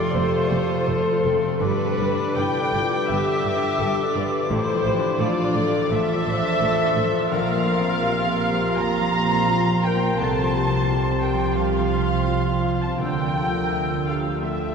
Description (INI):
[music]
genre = cinematic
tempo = 84 BPM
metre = 4/4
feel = uneven beats, rubato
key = D minor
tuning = A4 = 440 Hz
[part]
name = warm studio violin section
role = melody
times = 0.0-14.7 s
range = C4 to F5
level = -32 LUFS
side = left 3 dB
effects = none
[part]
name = silver concert flute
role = second line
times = 0.0-14.7 s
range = C6 to E6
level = -32 LUFS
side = left 1 dB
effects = none
[part]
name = warm clarinet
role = second line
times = 0.0-14.7 s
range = F4 to A4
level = -32 LUFS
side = right 1 dB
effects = none
[part]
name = warm studio violin section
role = second line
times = 0.0-14.7 s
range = A4 to Bb5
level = -32 LUFS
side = left 2 dB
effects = none
[part]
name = clear grand piano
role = accompaniment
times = 0.0-14.7 s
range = A1 to E5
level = -28 LUFS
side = equal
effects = none
[part]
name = dark symphonic viola section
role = accompaniment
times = 0.0-14.7 s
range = A4 to Bb5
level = -26 LUFS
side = right 1 dB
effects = none
[part]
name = mellow French horn section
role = sustained chords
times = 0.0-14.7 s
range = D4 to C5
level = -28 LUFS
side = left 2 dB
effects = none
[part]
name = concert harp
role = arpeggios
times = 0.0-14.7 s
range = F2 to A5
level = -28 LUFS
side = left 4 dB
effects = none
[part]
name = dark studio double bass section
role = bass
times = 0.1-14.7 s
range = F1 to D2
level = -29 LUFS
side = right 4 dB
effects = none
[part]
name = warm symphonic cello section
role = bass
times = 0.1-14.7 s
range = F2 to D3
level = -31 LUFS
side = right 3 dB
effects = none
[part]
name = timpani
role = percussion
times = 13.0-14.0 s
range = D3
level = -37 LUFS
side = right 1 dB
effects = none
[sound]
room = wet cathedral reverb, RT60 4.4 s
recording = minimal, uncompressed stereo recording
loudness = -19 LUFS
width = side -6 dB against mid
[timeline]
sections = 0.0-14.7 A section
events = none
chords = 0.0 F; 1.6 Gadd9; 4.5 Dmadd9/A; 7.3 Bbsus2; 10.2 Csus4; 13.0 Dmadd9